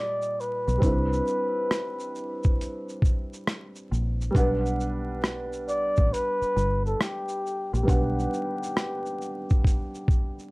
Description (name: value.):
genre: lo-fi hip hop.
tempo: 68 BPM.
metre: 4/4.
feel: swing 65% on 16ths.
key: G major.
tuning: A4 = 438 Hz.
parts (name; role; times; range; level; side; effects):
trumpet with bucket mute; melody; 0.0-10.5 s; G4 to D5; -29 LUFS; equal; low-pass filter, plate reverb.
dark upright piano; accompaniment; 0.0-10.5 s; Bb2 to F#5; -32 LUFS; right 1 dB; cassette tape, low-pass filter, plate reverb.
boom bap sampler-style drum kit; drums; 0.2-10.5 s; hi-hat, kick drum, rim click, shaker; -24 LUFS; equal; none.
deep dub fingered electric bass; bass; 0.7-8.3 s; G1 to C2; -27 LUFS; equal; none.
room: light reverb.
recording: vinyl crackle.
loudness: -24 LUFS.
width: side -24 dB against mid.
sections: 0.0-10.5 A section.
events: none.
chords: 0.0 Ebmaj7; 0.8 Cmaj9; 4.3 Gmaj7.